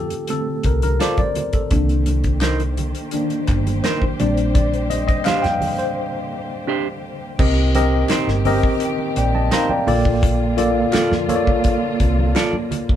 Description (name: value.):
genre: lush 1970s-style soul.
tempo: 85 BPM.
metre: 4/4.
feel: straight.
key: C dorian.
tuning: A4 = 440 Hz.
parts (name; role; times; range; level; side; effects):
tine electric piano; accompaniment; 0.0-13.0 s; D3 to Bb5; -20 LUFS; equal; overdrive, fast stereo tremolo.
hollow-body short-scale fingered electric bass; bass; 0.0-12.3 s; G1 to F2; -20 LUFS; equal; none.
damped 70s drum kit; drums; 0.1-13.0 s; crash cymbal, hi-hat, kick drum, snare drum; -21 LUFS; equal; none.
congas; percussion; 0.8-12.9 s; none; -31 LUFS; right 2 dB; none.
semi-hollow electric guitar; riff; 1.0-12.6 s; D4 to D5; -21 LUFS; right 3 dB; none.
muted studio string section; sustained chords; 1.7-13.0 s; D3 to C5; -29 LUFS; left 2 dB; none.
group handclap; percussion; 2.4-12.5 s; none; -33 LUFS; left 3 dB; none.
room: moderate small room reverb, RT60 0.5 s.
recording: band playing live in one room.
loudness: -16 LUFS.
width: side -10 dB against mid.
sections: 0.0-7.4 A section; 7.4-13.0 B section.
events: tine electric piano solo 0.0-7.4; break 6.0-7.4.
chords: 0.0 Bbmaj7; 1.7 Cm7; 4.2 Bb69; 7.4 Cm7; 9.9 Bbmaj7.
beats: 0.29 1.01 | 1.72 2.42 3.13 3.84 | 4.55 5.26 5.97 6.68 | 7.39 8.10 8.81 9.52 | 10.23 10.94 11.65 12.36.